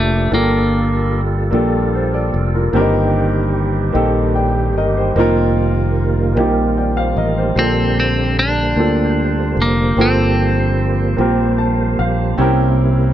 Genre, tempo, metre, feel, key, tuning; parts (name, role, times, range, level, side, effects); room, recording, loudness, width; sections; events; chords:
slow gospel; 50 BPM (dotted quarters); 6/8; straight; A4 = 440 Hz
clean electric guitar; melody; 0.0-1.2, 7.6-11.6 s; A3 to D4; -18 LUFS; equal
clear upright piano; accompaniment; 0.0-13.1 s; G2 to A5; -18 LUFS; equal
tonewheel organ; sustained chords; 0.0-13.1 s; C3 to C5; -22 LUFS; right 3 dB; fast rotary speaker, overdrive, chorus vibrato
fingered electric bass; bass; 0.0-13.1 s; F1 to D2; -18 LUFS; equal
light reverb; -13 LUFS; side -11 dB against mid
0.0-13.1 A section
upright piano fill 11.2-12.4
0.3 Gm9; 2.7 Cm7/G; 5.2 F7sus4; 7.6 Bbmaj9; 10.0 Gm11; 12.4 C7b9